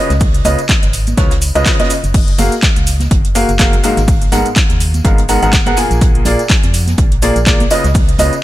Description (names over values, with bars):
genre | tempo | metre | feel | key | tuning
piano house | 124 BPM | 4/4 | swing 57% on 16ths | F# major | A4 = 439 Hz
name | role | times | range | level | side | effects
clear upright piano | riff | 0.0-8.3 s | G#2 to G#5 | -16 LUFS | equal | sidechain pumping, dub echo
organ-like FM bass | bass | 0.1-8.3 s | F#1 to E#2 | -16 LUFS | equal | sidechain pumping
house drum kit | drums | 0.1-8.4 s | cabasa, crash cymbal, handclaps, hi-hat | -18 LUFS | equal | overdrive
open jazz drum kit | drums | 0.1-8.3 s | hi-hat, snare drum | -29 LUFS | right 4 dB | sidechain pumping on hats, high-pass filter on hats, high-pass filter on snare, high-pass filter on room
tambourine and congas | percussion | 0.1-8.4 s | none | -25 LUFS | right 2 dB | none
electronic kick drum | drums | 0.2-8.1 s | none | -13 LUFS | equal | overdrive
room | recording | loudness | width
small room ambience | none | -10 LUFS | side -15 dB against mid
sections
0.0-8.4 A section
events
none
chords
0.0 C#9; 2.1 F#maj9; 4.1 G#m9; 5.8 A#7; 7.7 C#9